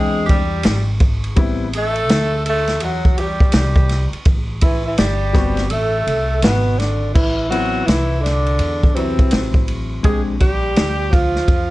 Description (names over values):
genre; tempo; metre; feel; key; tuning
hip hop, jazz-hop; 83 BPM; 4/4; swing 63% on 16ths; A dorian; A4 = 440 Hz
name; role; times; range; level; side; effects
breathy alto saxophone; melody; 0.0-11.7 s; E3 to Ab4; -21 LUFS; equal; slapback echo
breathy tenor saxophone; second line; 0.0-11.7 s; B2 to A4; -26 LUFS; right 2 dB; none
warm concert grand piano; accompaniment; 0.0-10.3 s; F#3 to G5; -23 LUFS; left 4 dB; none
upright bass; bass; 0.0-11.7 s; G1 to F2; -21 LUFS; equal; none
vintage drum kit; drums; 0.3-11.7 s; crash cymbal, hi-hat, kick drum, ride cymbal, snare drum; -17 LUFS; equal; none
room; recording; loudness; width
light reverb; dark, warm production; -14 LUFS; side -18 dB against mid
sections
0.0-7.2 A section; 7.2-11.7 B section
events
kick muted 5.7-7.2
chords
0.0 E7alt; 1.4 Am7; 7.2 Am69; 10.1 Bb13